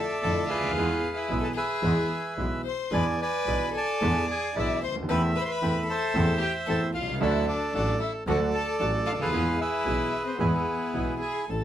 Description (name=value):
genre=tango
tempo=112 BPM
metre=4/4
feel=rubato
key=unclear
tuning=A4 = 440 Hz
part: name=bandoneon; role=melody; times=0.0-11.6 s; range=E4 to C6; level=-28 LUFS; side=right 1 dB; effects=none
part: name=rich violin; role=second line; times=0.0-11.6 s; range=B3 to C5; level=-33 LUFS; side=left 6 dB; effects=none
part: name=warm concert grand piano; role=accompaniment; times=0.2-11.6 s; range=A1 to A4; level=-30 LUFS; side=right 1 dB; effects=none
part: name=bandoneon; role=stabs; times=0.2-11.2 s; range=F3 to G#4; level=-38 LUFS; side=right 2 dB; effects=none
part: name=clear double bass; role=bass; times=0.2-11.6 s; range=A1 to F2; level=-30 LUFS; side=equal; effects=none
room=moderate studio reverb, RT60 0.7 s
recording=band playing live in one room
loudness=-24 LUFS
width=side -11 dB against mid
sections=0.0-11.5 A section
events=none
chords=0.0 Dmadd9/F; 0.8 E; 2.9 E7; 5.1 Am/E; 7.2 D; 9.3 E